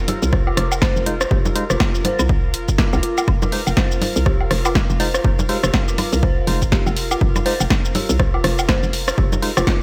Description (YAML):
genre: minimal techno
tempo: 122 BPM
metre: 4/4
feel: swing 59% on 16ths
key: unclear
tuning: A4 = 435 Hz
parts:
  - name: airy breathy pad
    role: texture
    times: 0.0-9.8 s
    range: F4 to F5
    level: -32 LUFS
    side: equal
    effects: chorus, sidechain pumping
  - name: dark detuned synth bell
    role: riff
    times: 0.1-9.6 s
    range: F4 to C5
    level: -29 LUFS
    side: equal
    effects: chorus, phaser, sidechain pumping, digital delay
  - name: punchy analog drum machine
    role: drums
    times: 0.1-9.8 s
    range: hi-hat, shaker, snare drum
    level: -26 LUFS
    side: equal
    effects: gated reverb
  - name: electronic congas, rim click and woodblock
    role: percussion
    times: 0.1-9.8 s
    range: none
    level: -26 LUFS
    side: equal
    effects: overdrive, gated reverb
  - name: hollow knocking FM bass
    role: bass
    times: 0.2-9.6 s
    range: F1 to C2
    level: -24 LUFS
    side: equal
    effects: sidechain pumping
  - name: electronic kick drum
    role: drums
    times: 0.3-9.8 s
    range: none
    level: -22 LUFS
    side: equal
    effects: none
  - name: percussive organ stab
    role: stabs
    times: 1.1-9.5 s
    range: Ab3 to C5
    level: -30 LUFS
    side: equal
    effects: chorus, digital delay
room: light reverb, digital ambience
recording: bright 1980s-style digital production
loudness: -18 LUFS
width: mono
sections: 0.0-9.8 A section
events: none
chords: 0.0 Fm7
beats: 0.33 0.82 | 1.31 1.80 2.29 2.79 | 3.28 3.77 4.26 4.75 | 5.25 5.74 6.23 6.72 | 7.21 7.70 8.20 8.69 | 9.18 9.67